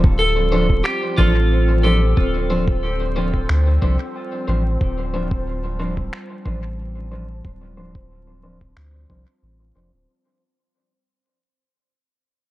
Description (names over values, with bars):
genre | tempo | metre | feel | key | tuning
ambient dub | 91 BPM | 4/4 | straight | unclear | A4 = 440 Hz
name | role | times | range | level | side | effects
warbly tape-like pad | sustained chords | 0.0-10.1 s | G3 to A5 | -33 LUFS | right 1 dB | chorus, built-in reverb
soft dub sub bass | bass | 0.0-10.1 s | D1 to D2 | -20 LUFS | equal | none
electronic kick drum | drums | 0.0-9.2 s | none | -19 LUFS | equal | none
bubbling stepped-filter texture | texture | 0.0-10.1 s | C4 to C5 | -31 LUFS | equal | chorus, built-in reverb
clean lap steel guitar | melody | 0.2-3.8 s | F4 to A4 | -23 LUFS | right 1 dB | dub echo
electric guitar at the edge of break-up | stabs | 0.5-9.9 s | F3 to C5 | -26 LUFS | equal | low-pass filter, dub echo
electronic finger snaps | drums | 0.9-8.9 s | none | -31 LUFS | equal | dub echo
room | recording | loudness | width
light reverb, digital ambience | vinyl crackle, nothing above 10.9 kHz | -17 LUFS | side -16 dB against mid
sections
0.0-10.1 A section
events
fade-out 0.0-10.1; filter sweep on clean electric guitar 0.0-10.1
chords
0.0 Fadd9/D